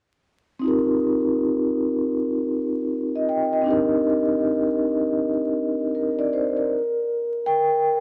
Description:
hip hop; 79 BPM; 4/4; swing 64% on 16ths; Eb major; A4 = 442 Hz
vibraphone with soft mallets; solo; 0.6-8.0 s; C4 to G5; -22 LUFS; equal; cassette tape, low-pass filter
light reverb, small room ambience; dark, warm production, vinyl crackle; -23 LUFS; mono
0.6-6.7 A section; 6.7-8.0 B section
vibraphone solo 6.7-8.0
0.6 Eb6; 3.7 Cm9; 6.7 Eb (rootless)

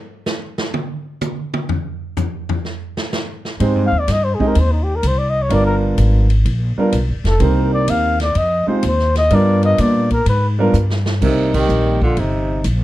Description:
jazz, small-group swing and bop; 126 BPM; 4/4; swing 68% on 8ths; C minor; A4 = 441 Hz
swinging big-band drum kit; drums; 0.3-12.8 s; crash cymbal, hi-hat, kick drum, ride cymbal, snare drum, toms; -25 LUFS; equal
warm concert grand piano; accompaniment; 3.6-12.0 s; G3 to Eb5; -18 LUFS; right 2 dB
upright bass; bass; 3.6-12.8 s; F1 to A#2; -16 LUFS; equal
breathy flugelhorn; melody; 3.9-12.7 s; Eb4 to F5; -19 LUFS; left 2 dB
breathy tenor saxophone; second line; 11.2-12.7 s; C3 to Eb3; -22 LUFS; right 3 dB
light reverb; dark, warm production; -15 LUFS; side -15 dB against mid
0.0-11.2 A section; 11.2-12.8 B section
flugelhorn solo 0.0-11.2; drum solo 0.0-3.6; drum fill 10.7-11.2; band accent 11.5
0.0 N.C.; 3.6 Abmaj7; 5.5 G7#9; 7.4 Cm7; 8.4 Fm7; 9.3 G7#9; 11.2 Cm7

